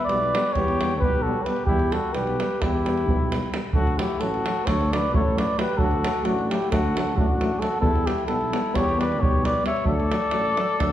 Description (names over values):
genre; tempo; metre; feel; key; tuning
balkan folk, Balkan brass band; 264 BPM (eighths); 9/8; straight; D major; A4 = 440 Hz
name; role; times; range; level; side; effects
mellow flugelhorn; melody; 0.0-10.9 s; F#4 to E5; -25 LUFS; equal; none
mellow trumpet; second line; 0.0-10.9 s; D4 to C#5; -30 LUFS; left 3 dB; none
davul; percussion; 0.0-10.9 s; none; -26 LUFS; right 1 dB; none
warm euphonium; accompaniment; 0.1-10.9 s; A3 to B3; -32 LUFS; left 4 dB; none
warm euphonium; accompaniment; 0.1-10.9 s; F#3 to G3; -31 LUFS; right 2 dB; none
mellow tuba; bass; 0.1-10.9 s; A1 to E2; -29 LUFS; equal; none
room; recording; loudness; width
wet recital hall reverb, RT60 1.4 s; heard from further back in the room; -20 LUFS; side -12 dB against mid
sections
0.0-10.9 A section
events
none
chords
0.0 Em; 3.7 D; 7.8 Em; 9.9 D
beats
0.08 0.31 0.54 0.77 0.99 1.22 1.45 | 1.68 1.91 2.14 2.37 2.59 2.82 3.05 3.28 3.50 | 3.73 3.96 4.19 4.42 4.64 4.87 5.10 5.32 5.55 | 5.78 6.00 6.23 6.46 6.68 6.91 7.14 7.37 7.59 | 7.82 8.04 8.27 8.50 8.72 8.95 9.18 9.40 9.63 | 9.86 10.09 10.31 10.54 10.77